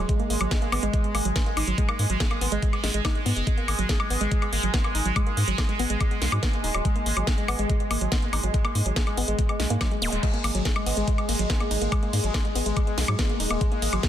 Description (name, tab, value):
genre	psychedelic trance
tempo	142 BPM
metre	4/4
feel	straight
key	G# minor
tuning	A4 = 440 Hz
part	bubbling stepped-filter texture	sustained chords	0.0-14.1 s	G#3	-30 LUFS	right 2 dB	chorus, built-in reverb, sidechain pumping
part	woody wave-folded pluck	riff	0.0-14.1 s	F#3 to G#4	-31 LUFS	moving between left 5 dB and right 3 dB	chorus, auto-pan, sidechain pumping, tape echo
part	round analog bass	bass	0.0-14.0 s	D#1 to G#2	-27 LUFS	equal	none
part	drum and bass drum kit	drums	0.1-14.1 s	crash cymbal, hi-hat, ride cymbal, snare drum, woodblock	-29 LUFS	left 1 dB	none
part	electronic kick drum	drums	0.1-14.1 s	none	-25 LUFS	equal	none
part	zap	sound effects	10.0-10.1 s	none	-32 LUFS	equal	none
room	little or no reverb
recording	dense, heavily limited modern master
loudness	-22 LUFS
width	side -11 dB against mid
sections	0.0-14.1 A section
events	none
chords	0.0 G#5